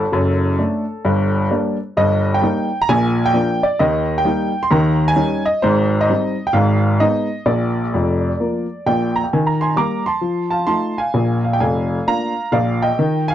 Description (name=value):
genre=jazz, stride piano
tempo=131 BPM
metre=4/4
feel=swing 64% on 8ths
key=Eb major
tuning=A4 = 440 Hz
part: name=clear upright piano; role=solo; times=0.0-13.3 s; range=F1 to D6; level=-15 LUFS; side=equal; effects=none
room=little or no reverb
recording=dry, close 1970s-style studio recording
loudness=-15 LUFS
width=side -11 dB against mid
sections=0.0-9.3 A section; 9.3-13.3 B section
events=none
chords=0.1 D/F#; 1.0 Gm; 2.0 Eb/G; 2.9 Bb; 3.8 Eb; 4.7 Eb7; 5.6 Abmaj7; 6.6 Abm; 7.5 Bb; 9.3 Eb; 10.2 F7; 11.1 Bb7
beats=| 0.12 0.58 1.04 1.50 | 1.96 2.42 2.88 3.34 | 3.80 4.26 4.72 5.18 | 5.64 6.09 6.55 7.01 | 7.47 7.93 8.39 8.85 | 9.31 9.77 10.23 10.69 | 11.14 11.60 12.06 12.52 | 12.98